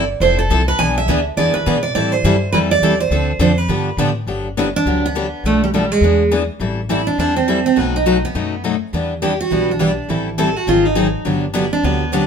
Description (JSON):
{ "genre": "acoustic string swing (jazz manouche)", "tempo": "206 BPM", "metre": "4/4", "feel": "swing 59% on 8ths", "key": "G major from 4.3 s", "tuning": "A4 = 436 Hz", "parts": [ { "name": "picked steel-string acoustic guitar", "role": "melody", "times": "0.0-12.3 s", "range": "G3 to G#5", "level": "-18 LUFS", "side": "right 3 dB", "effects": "none" }, { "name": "picked steel-string acoustic guitar", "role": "accompaniment", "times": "0.0-12.2 s", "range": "B2 to A4", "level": "-20 LUFS", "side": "left 4 dB", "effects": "none" }, { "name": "picked steel-string acoustic guitar", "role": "accompaniment", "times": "0.0-4.1, 8.9-12.2 s", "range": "D3 to B4", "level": "-21 LUFS", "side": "right 5 dB", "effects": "none" }, { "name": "upright bass", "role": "bass", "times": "0.0-12.3 s", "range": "F1 to B2", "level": "-22 LUFS", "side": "left 1 dB", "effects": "none" } ], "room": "moderate studio reverb, RT60 0.7 s", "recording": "minimal, uncompressed stereo recording, faint mains hum", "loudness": "-14 LUFS", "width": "side -6 dB against mid", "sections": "0.0-4.3 A section; 4.3-12.3 B section", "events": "none", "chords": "0.0 Fmaj9; 0.8 E7; 2.0 Am7; 3.1 Dm7; 3.7 G7; 4.3 Gmaj7; 5.4 Bm7b5; 6.0 E7; 6.6 Am7; 7.8 B7; 8.9 Em7; 10.1 Am7; 10.7 Ab7; 11.3 Gmaj7", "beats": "0.21 0.50 | 0.79 1.08 1.37 1.66 | 1.96 2.25 2.54 2.83 | 3.12 3.41 3.70 3.99 | 4.28 4.57 4.86 5.15 | 5.44 5.73 6.02 6.31 | 6.60 6.89 7.18 7.47 | 7.76 8.06 8.35 8.64 | 8.93 9.22 9.51 9.80 | 10.09 10.38 10.67 10.96 | 11.26 11.55 11.84 12.13" }